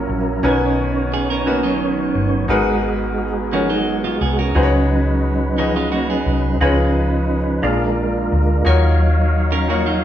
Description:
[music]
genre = slow gospel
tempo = 58 BPM (dotted quarters)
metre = 6/8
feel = straight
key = unclear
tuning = A4 = 440 Hz
[part]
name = clear grand piano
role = accompaniment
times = 0.0-10.0 s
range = G#2 to D#5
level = -22 LUFS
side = left 3 dB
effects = none
[part]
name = percussive tonewheel organ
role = sustained chords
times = 0.0-10.0 s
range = D#3 to E#5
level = -20 LUFS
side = right 2 dB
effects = slow rotary speaker, chorus vibrato
[part]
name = hollow-body short-scale fingered electric bass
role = bass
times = 0.0-10.0 s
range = G1 to D#2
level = -20 LUFS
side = equal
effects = none
[part]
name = clean electric guitar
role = second line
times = 1.1-10.0 s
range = E#3 to A#4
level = -23 LUFS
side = right 4 dB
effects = none
[sound]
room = wet large studio reverb, RT60 1.4 s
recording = band playing live in one room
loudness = -15 LUFS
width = side -11 dB against mid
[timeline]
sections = 0.0-10.0 A section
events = none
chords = 0.4 Bmaj9; 2.5 G#m9; 4.5 C#9sus4; 6.6 C#9; 7.6 A#7; 8.7 D#m9

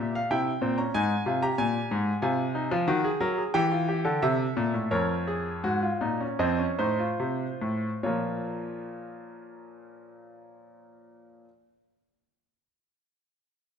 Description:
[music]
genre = classical, baroque-style 3-part fugue for grand piano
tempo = 70-94 BPM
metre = 4/4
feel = straight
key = Bb minor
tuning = A4 = 440 Hz
[part]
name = clear grand piano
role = solo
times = 0.0-11.5 s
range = F2 to Bb5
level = -26 LUFS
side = equal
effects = none
[sound]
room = moderate recital hall reverb, RT60 1.4 s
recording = none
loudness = -25 LUFS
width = side -7 dB against mid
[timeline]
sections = 0.0-8.0 A section; 8.0-11.5 B section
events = slowing down 0.9-8.0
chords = 0.0 C7; 0.9 Fm/Ab (rootless); 2.2 Cdim; 3.5 C7; 4.9 Bbm/F; 6.4 F7; 8.0 Bbm

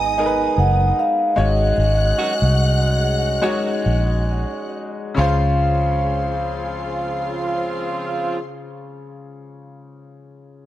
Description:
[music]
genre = lush 1970s-style soul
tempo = 66-77 BPM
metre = 4/4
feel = swing 58% on 16ths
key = Db major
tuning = A4 = 440 Hz
[part]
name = vibraphone with soft mallets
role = melody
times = 0.0-8.4 s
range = Eb5 to Ab5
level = -22 LUFS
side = right 1 dB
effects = tape echo
[part]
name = warm symphonic string section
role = second line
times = 0.0-8.4 s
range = Ab4 to Gb6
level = -30 LUFS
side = left 2 dB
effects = none
[part]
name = bright concert grand piano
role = accompaniment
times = 0.0-10.7 s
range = Db3 to Db5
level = -26 LUFS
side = left 2 dB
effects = none
[part]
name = warm French horn section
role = sustained chords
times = 0.0-8.4 s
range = Db3 to C5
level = -31 LUFS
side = right 2 dB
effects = none
[part]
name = vintage muted fingered electric bass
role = bass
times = 0.0-8.4 s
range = Gb1 to Db2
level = -19 LUFS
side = equal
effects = none
[part]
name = warm horn section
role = stabs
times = 2.2-8.4 s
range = Db3 to Gb4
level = -27 LUFS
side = right 3 dB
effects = none
[sound]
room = light reverb, studio reverb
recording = none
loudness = -17 LUFS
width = side -13 dB against mid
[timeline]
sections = 0.0-5.2 A section; 5.2-8.8 B section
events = slowing down 0.0-5.2; band accent 1.8-5.2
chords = 0.0 Cb6; 1.4 Ab7sus4; 5.2 Dbmaj7

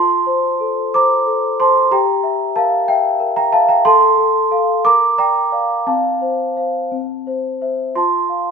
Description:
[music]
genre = classical, lullaby for celesta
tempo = 57-63 BPM (dotted quarters)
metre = 6/8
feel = rubato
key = F major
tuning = A4 = 440 Hz
[part]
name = large celesta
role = solo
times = 0.0-8.5 s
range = C4 to D6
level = -13 LUFS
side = equal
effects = none
[sound]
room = moderate scoring stage reverb, RT60 1.6 s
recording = minimal, uncompressed stereo recording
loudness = -13 LUFS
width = side -5 dB against mid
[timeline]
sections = 0.0-8.5 A section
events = none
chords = 0.0 F; 1.9 Edim/G; 3.9 F/A; 4.8 Gm7/Bb; 5.9 F/C; 6.9 C; 8.0 F

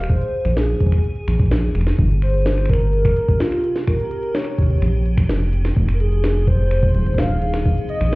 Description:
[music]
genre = IDM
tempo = 127 BPM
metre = 4/4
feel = straight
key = F minor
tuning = A4 = 440 Hz
[part]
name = warm velvety synth lead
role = melody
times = 0.0-8.2 s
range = F4 to F5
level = -24 LUFS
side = equal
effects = chorus, cassette tape, tape echo
[part]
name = icy glass pad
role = sustained chords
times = 0.1-8.2 s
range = C3 to Ab4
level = -29 LUFS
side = equal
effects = chorus, built-in reverb
[part]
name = rubbery square bass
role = bass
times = 0.0-8.2 s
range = Eb1 to Bb1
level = -18 LUFS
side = equal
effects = none
[part]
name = organic electronic drum kit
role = drums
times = 0.0-8.2 s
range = cabasa, finger snaps, hi-hat, snare drum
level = -26 LUFS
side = left 1 dB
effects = overdrive, tape echo
[part]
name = electronic kick drum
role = drums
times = 0.1-7.8 s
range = none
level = -17 LUFS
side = equal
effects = overdrive
[sound]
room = light reverb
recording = heard muffled through a wall, club reverb, EQ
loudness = -16 LUFS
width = side -22 dB against mid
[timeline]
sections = 0.0-8.2 A section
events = none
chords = 0.0 Fm (rootless); 2.0 Gm7b5; 5.8 Fm

